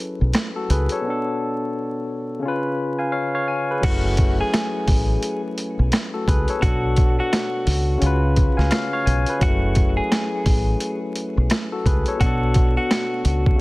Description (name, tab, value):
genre	hip hop, boom-bap hip-hop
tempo	86 BPM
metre	4/4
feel	swing 61% on 16ths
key	F# minor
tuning	A4 = 439 Hz
part	barky tine electric piano	accompaniment	0.0-13.6 s	B2 to G#5	-24 LUFS	left 2 dB	medium stereo tremolo, cassette tape, high-pass filter, low-pass filter
part	deep dub fingered electric bass	bass	0.2-13.5 s	F#1 to C#2	-21 LUFS	equal	none
part	boom bap sampler-style drum kit	drums	0.3-13.6 s	crash cymbal, hi-hat, kick drum, rim click, snare drum	-21 LUFS	equal	vintage 12-bit sampler grit
part	clean electric guitar	melody	3.8-13.6 s	F#4 to G#4	-26 LUFS	equal	high-pass filter, low-pass filter, tape echo
room	light reverb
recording	dense, heavily limited modern master, vinyl crackle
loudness	-18 LUFS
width	side -21 dB against mid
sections	0.0-3.8 A section; 3.8-13.6 B section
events	break 1.0-3.8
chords	0.0 F#m7; 1.0 Bm7; 2.4 C#7; 3.8 F#m7; 6.6 Bm7; 8.0 C#7; 9.4 F#m7; 12.2 Bm7